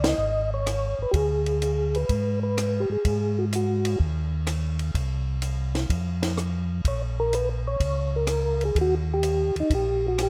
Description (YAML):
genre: soul jazz organ trio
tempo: 126 BPM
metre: 4/4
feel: swing 69% on 8ths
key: unclear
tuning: A4 = 440 Hz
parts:
  - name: percussive tonewheel organ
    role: melody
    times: 0.0-4.0, 6.9-10.3 s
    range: Eb4 to Eb5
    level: -28 LUFS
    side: equal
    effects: slow rotary speaker, chorus vibrato
  - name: mellow tonewheel organ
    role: bass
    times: 0.0-10.3 s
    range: Ab1 to Ab2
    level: -29 LUFS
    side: equal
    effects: chorus vibrato, slow rotary speaker
  - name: compact cocktail drum kit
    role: drums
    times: 0.0-10.3 s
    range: hi-hat, kick drum, ride cymbal, rim click, snare drum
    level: -33 LUFS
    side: equal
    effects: none
room: light reverb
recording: rough home demo mix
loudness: -25 LUFS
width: mono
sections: 0.0-10.3 A section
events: band accent 0.0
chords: 0.0 Dbsus2; 1.1 Abdim/D; 3.0 Ab5; 5.0 N.C.; 6.9 Bbm; 8.8 Eb